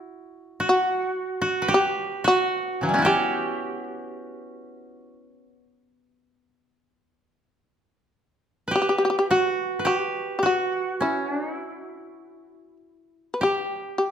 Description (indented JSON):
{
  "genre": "japanese traditional, Japanese chamber music",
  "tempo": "50-57 BPM",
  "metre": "4/4",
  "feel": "rubato",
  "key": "E kumoi",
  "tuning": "A4 = 440 Hz",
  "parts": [
    { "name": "koto", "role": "second line", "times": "0.0-14.1 s", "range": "C#3 to B4", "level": "-25 LUFS", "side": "right 2 dB", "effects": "none" },
    { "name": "shamisen", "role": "melody", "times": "0.7-14.1 s", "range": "E4 to B4", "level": "-23 LUFS", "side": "left 1 dB", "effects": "none" }
  ],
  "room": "moderate scoring stage reverb, RT60 1.5 s",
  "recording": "none",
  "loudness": "-21 LUFS",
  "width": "side -8 dB against mid",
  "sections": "0.0-13.4 A section",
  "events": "none",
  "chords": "none"
}